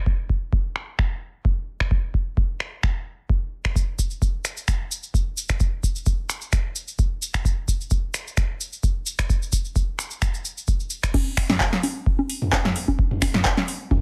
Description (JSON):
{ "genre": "house", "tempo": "130 BPM", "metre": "4/4", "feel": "swing 54% on 16ths", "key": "none", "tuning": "none", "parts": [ { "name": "electronic kick drum", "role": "drums", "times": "0.1-14.0 s", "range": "none", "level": "-24 LUFS", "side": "equal", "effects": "none" }, { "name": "electro analog drum machine", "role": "drums", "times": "0.8-14.0 s", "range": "congas, crash cymbal, finger snaps, handclaps, hi-hat, snare drum, toms", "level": "-26 LUFS", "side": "equal", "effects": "low-pass filter on toms, low-pass filter on hats, low-pass filter on cymbals, low-pass filter on snare, low-pass filter on perc, low-pass filter on room" }, { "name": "cabasa", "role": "percussion", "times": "3.8-11.1 s", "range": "none", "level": "-33 LUFS", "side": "equal", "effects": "none" } ], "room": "little or no reverb", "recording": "lossy compression artefacts", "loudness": "-24 LUFS", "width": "mono", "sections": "0.0-11.1 A section; 11.1-14.0 B section", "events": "drop 11.1-14.0", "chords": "none" }